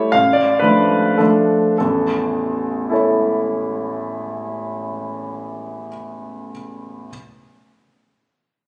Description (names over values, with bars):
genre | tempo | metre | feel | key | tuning
classical, romantic triple-time dance for piano with dotted rhythms | 92-142 BPM | 3/4 | rubato | A major | A4 = 439 Hz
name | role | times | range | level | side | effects
clear baby grand piano | solo | 0.0-7.1 s | A1 to F5 | -19 LUFS | equal | none
room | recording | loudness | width
wet recital hall reverb, RT60 1.8 s | recorded on a phone in the room, club reverb, compression | -18 LUFS | mono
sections
0.0-1.8 A section; 1.8-5.0 B section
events
slowing down 0.0-1.8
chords
0.1 Dm/A; 1.8 A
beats
| 0.14 0.62 1.19 | 1.80 2.34 2.90 | 3.42 3.98 4.53